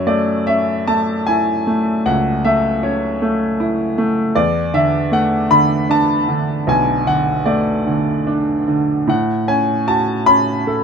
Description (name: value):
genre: classical, lyrical solo piano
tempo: 77 BPM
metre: 3/4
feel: rubato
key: unclear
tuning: A4 = 444 Hz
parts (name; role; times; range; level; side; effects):
- warm baby grand piano; solo; 0.0-10.8 s; B1 to B5; -14 LUFS; equal; none
room: little or no reverb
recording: close, detailed microphones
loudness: -14 LUFS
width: side -6 dB against mid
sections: 0.0-10.8 A section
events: none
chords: 0.0 F#m7; 4.4 E7sus4; 9.1 A69